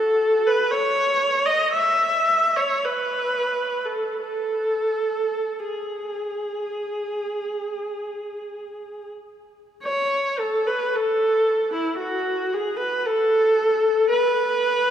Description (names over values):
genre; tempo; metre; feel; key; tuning
classical, free, expressive piece for unaccompanied viola; 33-62 BPM; 4/4; rubato; unclear; A4 = 440 Hz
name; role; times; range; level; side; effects
dark viola; solo; 0.0-14.9 s; E4 to E5; -20 LUFS; equal; none
room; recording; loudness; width
wet cathedral reverb, RT60 4.2 s; none; -20 LUFS; side -9 dB against mid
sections
0.0-9.8 A section; 9.8-14.9 B section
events
none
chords
none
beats
0.71 1.74 2.85 | 4.19 5.59 6.95 8.32 | 9.82 10.94 11.98 13.05 | 14.11